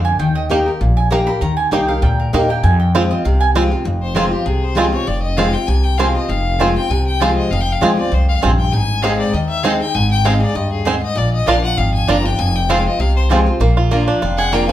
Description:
bluegrass; 197 BPM; 4/4; straight; F dorian; A4 = 440 Hz
picked steel-string acoustic guitar; accompaniment; 0.0-14.7 s; F2 to Bb4; -19 LUFS; left 2 dB
mandolin; stabs; 0.0-14.6 s; Bb3 to B5; -22 LUFS; right 4 dB
upright bass; bass; 0.0-14.7 s; F1 to F2; -17 LUFS; equal
bluegrass banjo; melody; 0.5-14.7 s; Ab3 to Ab4; -20 LUFS; right 4 dB
rich fiddle; second line; 4.0-14.7 s; G4 to Bb5; -22 LUFS; left 5 dB
moderate large studio reverb, RT60 0.9 s; band playing live in one room; -13 LUFS; side -12 dB against mid
0.0-3.9 A section; 3.9-13.6 A section; 13.6-14.7 A section
mandolin solo 0.0-3.9; fiddle solo 3.9-14.7
0.2 Eb; 2.6 Fm; 8.7 Ab; 11.2 Bb; 12.4 Fm; 13.6 Bb

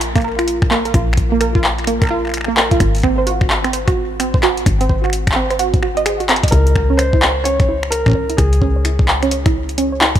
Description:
IDM; 129 BPM; 4/4; swing 62% on 16ths; C# melodic minor; A4 = 435 Hz
woody FM bass; bass; 0.0-10.2 s; G#1 to C#2; -20 LUFS; equal
booming analog drum machine; drums; 0.0-10.2 s; finger snaps, handclaps, hi-hat; -19 LUFS; left 1 dB
warbly dusty pluck; arpeggios; 0.2-10.1 s; A#3 to D#5; -19 LUFS; right 3 dB; chorus, ping-pong delay
electronic kick drum; drums; 0.2-10.2 s; -16 LUFS; equal
felt-muted upright piano; melody; 6.5-9.0 s; G#4 to C#5; -21 LUFS; left 1 dB; tape echo
light reverb, digital ambience; -13 LUFS; side -11 dB against mid
0.0-10.2 A section
drum fill 6.3
0.0 A#5; 2.8 G#7; 6.5 C#m

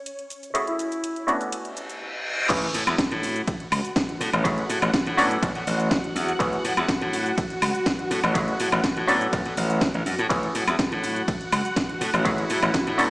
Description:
filtered disco house; 123 BPM; 4/4; straight; A major; A4 = 440 Hz
muted clav; accompaniment; 0.0-13.1 s; D3 to B4; -25 LUFS; equal; phaser, sidechain pumping, low-pass filter
string machine, full ensemble; sustained chords; 0.0-13.1 s; F#4 to C#6; -30 LUFS; equal; ensemble chorus, sidechain pumping, low-pass filter
house drum kit; drums; 0.1-13.1 s; cabasa, crash cymbal, hi-hat, ride cymbal, snare drum, woodblock; -27 LUFS; equal; overdrive
warm horn section; melody; 0.7-1.3, 12.4-13.0 s; E4; -31 LUFS; equal; sidechain pumping, low-pass filter, dub echo
reverse cymbal and impact; sound effects; 1.8-4.5 s; -29 LUFS; equal
glassy slap bass; bass; 2.5-13.1 s; A1 to A2; -25 LUFS; equal; sidechain pumping, low-pass filter
electronic kick drum; drums; 2.5-12.8 s; -29 LUFS; equal
moderate plate reverb, RT60 2.1 s; played on a big sound system in a bare room, stone room reverb, small speaker sound; -21 LUFS; side -22 dB against mid
0.0-2.5 A section; 2.5-13.1 B section
reverse cymbal 1.8-2.5; drop 2.5-13.1; impact 2.5-4.5
0.0 Amaj7; 0.5 F#m7/A; 1.3 Bm9/A; 2.5 Amaj7; 4.5 F#m7/A; 5.2 Bm9/A; 6.4 Amaj7; 8.4 F#m7/A; 9.1 Bm9/A; 10.3 Amaj7; 12.3 F#m7/A

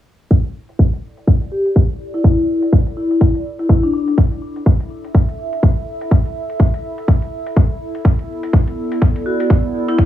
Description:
bass house; 124 BPM; 4/4; swing 58% on 16ths; A4 = 440 Hz
electronic kick drum; drums; 0.3-10.1 s; -12 LUFS; equal
warbly tape-like pad; texture; 1.4-10.1 s; B3 to E5; -25 LUFS; right 1 dB; chorus, built-in reverb, phaser, sidechain pumping
electronic hi-hat; drums; 0.4-10.0 s; -44 LUFS; left 4 dB
vibraphone with hard mallets; melody; 1.5-4.0, 9.3-10.1 s; D4 to G4; -19 LUFS; left 2 dB; digital delay
digital ambience; low-pass filter, studio ambience; -14 LUFS; side -12 dB against mid
0.3-10.1 A section
fade-in on ambient pad 0.3-10.1; filter sweep 0.3-10.1
0.3 Dsus2; 8.0 Bsus4

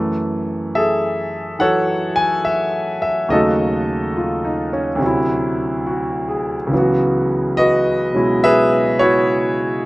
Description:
solo jazz; 70 BPM; 4/4; swing 66% on 8ths; C# minor; A4 = 440 Hz
clear concert grand piano; solo; 0.0-9.9 s; C#2 to G#5; -16 LUFS; equal; slapback echo
little or no reverb; recorded outdoors, with no room sound; -15 LUFS; side -20 dB against mid
0.0-9.9 A section
0.0 F#m9; 3.3 D#m7b5; 5.0 D9; 6.7 C#m11

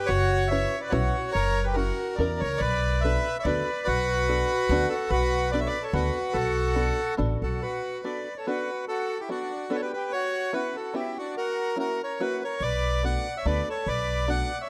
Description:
musette waltz; 144 BPM; 3/4; swing 55% on 8ths; B minor; A4 = 442 Hz
bandoneon; melody; 0.0-14.7 s; F#4 to F#5; -30 LUFS; equal
accordion; second line; 0.0-14.7 s; D4 to D5; -36 LUFS; equal
upright bass; bass; 0.1-7.6, 12.6-14.4 s; F#1 to E2; -30 LUFS; equal
open-back banjo; accompaniment; 0.5-14.5 s; A3 to B4; -34 LUFS; equal
light reverb; close, detailed microphones; -27 LUFS; mono
0.0-7.6 A section; 7.6-14.7 A section
0.1 F#7sus4; 1.4 F#7; 2.6 Bm7; 10.1 F#7sus4; 11.4 F#7; 12.6 Bm7

